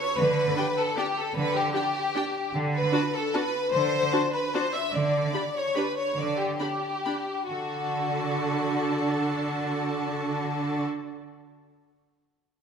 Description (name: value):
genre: classical, orchestral ballroom waltz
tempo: 128-164 BPM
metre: 3/4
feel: rubato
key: D major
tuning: A4 = 440 Hz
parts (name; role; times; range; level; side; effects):
- rich studio violin section; second line; 0.0-10.8 s; F#4 to E5; -27 LUFS; left 2 dB; none
- clear studio cello section; bass; 0.2-10.8 s; D3; -31 LUFS; right 3 dB; none
- rich studio violin section; melody; 0.6-10.8 s; G5 to B5; -38 LUFS; left 5 dB; none
- rich studio viola section; accompaniment; 0.6-10.8 s; D4 to A4; -31 LUFS; right 2 dB; none
room: wet scoring stage reverb, RT60 1.9 s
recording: minimal, uncompressed stereo recording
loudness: -24 LUFS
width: side -6 dB against mid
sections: 0.0-7.5 A section; 7.5-10.1 B section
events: slowing down 4.3-7.5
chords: 0.2 G/D; 2.5 D7; 4.9 G/D; 7.5 D